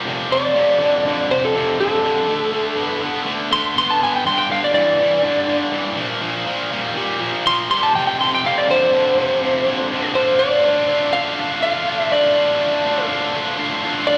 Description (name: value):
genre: rock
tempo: 122 BPM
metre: 4/4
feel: straight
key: D minor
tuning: A4 = 439 Hz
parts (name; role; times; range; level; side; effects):
- tight distorted guitar; riff; 0.0-14.2 s; F2 to F4; -23 LUFS; equal; distortion, slapback echo
- electric slide guitar; melody; 0.3-14.2 s; A4 to C6; -19 LUFS; equal; slapback echo
room: light reverb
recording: live gig heard through the venue's PA, recital hall reverb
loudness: -18 LUFS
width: mono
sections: 0.0-10.2 A section; 10.2-14.2 B section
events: electric slide guitar solo 0.0-10.2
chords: 0.1 F; 2.3 D5; 4.3 G5; 6.0 Bb5; 7.9 F5; 10.2 Dm